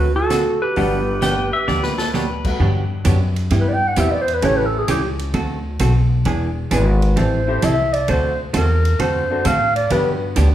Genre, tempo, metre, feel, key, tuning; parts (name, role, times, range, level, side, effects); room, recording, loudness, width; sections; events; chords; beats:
country, western swing; 131 BPM; 4/4; swing 68% on 8ths; G major; A4 = 437 Hz
clean lap steel guitar; melody; 0.0-2.1 s; A4 to B4; -23 LUFS; equal
breathy clarinet; second line; 0.0-10.1 s; F#4 to G5; -20 LUFS; right 1 dB
hollow-body jazz guitar; accompaniment; 0.0-10.5 s; C3 to A4; -22 LUFS; right 2 dB
upright bass; bass; 0.0-10.5 s; E1 to A2; -19 LUFS; equal
swinging big-band drum kit; drums; 0.3-10.5 s; crash cymbal, hi-hat, kick drum, ride cymbal, snare drum; -30 LUFS; equal
bright upright piano; accompaniment; 0.8-10.5 s; G3 to F#5; -26 LUFS; left 3 dB
pedal steel guitar; second line; 1.2-2.5 s; A4 to G5; -22 LUFS; left 2 dB
moderate large studio reverb, RT60 1.1 s; band playing live in one room; -16 LUFS; side -12 dB against mid
0.0-2.6 A section; 2.6-10.5 B section
drum fill 1.7-2.1; clarinet solo 2.6-10.5
0.0 D7; 0.8 Gmaj7; 3.5 Cmaj7/G; 4.4 A7; 5.3 D6; 6.3 E7; 7.2 Am7; 8.1 D7; 9.9 Gmaj7
0.30 | 0.76 1.22 1.68 2.14 | 2.60 3.05 3.51 3.97 | 4.42 4.88 5.34 5.80 | 6.25 6.71 7.17 7.62 | 8.08 8.54 8.99 9.45 | 9.91 10.36